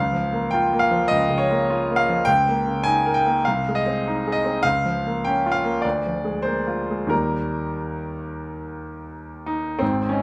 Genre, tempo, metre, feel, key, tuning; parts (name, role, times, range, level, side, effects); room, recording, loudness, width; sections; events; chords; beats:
classical, romantic character piece for solo piano; 87-105 BPM; 4/4; rubato; A4 = 441 Hz
bright baby grand piano; solo; 0.0-10.2 s; Ab1 to Ab5; -22 LUFS; equal
moderate recital hall reverb, RT60 1.3 s; close, detailed microphones; -22 LUFS; mono
0.0-9.8 A section
0.0 Bbm/Db; 2.3 Eb7/Db; 3.4 Ab/C; 4.6 Bbm/Db; 5.8 Bb7/D; 7.1 Eb
0.53 1.10 1.69 | 2.27 2.86 3.45 4.04 | 4.63 5.24 5.84 6.45 | 7.11 7.80 8.48 9.14 | 9.81